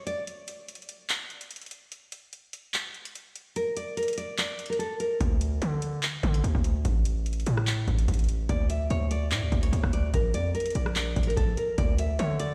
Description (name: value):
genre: hip hop, trap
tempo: 146 BPM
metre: 4/4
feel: half-time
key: unclear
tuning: A4 = 440 Hz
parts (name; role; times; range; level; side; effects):
- nylon-string guitar; melody; 0.0-0.2, 3.6-5.2, 8.5-12.5 s; A4 to E5; -34 LUFS; equal; low-pass filter
- booming analog drum machine; drums; 0.1-12.5 s; handclaps, hi-hat, kick drum, rim click; -31 LUFS; equal; none
- distorted 808-style bass; bass; 5.2-12.5 s; A1 to D3; -30 LUFS; equal; distortion
room: little or no reverb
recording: played on a big sound system in a bare room, stone room reverb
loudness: -28 LUFS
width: mono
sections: 0.0-12.5 A section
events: break 0.0-5.2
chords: 0.0 N.C.; 8.5 D5; 10.1 Bb5; 11.8 Dsus2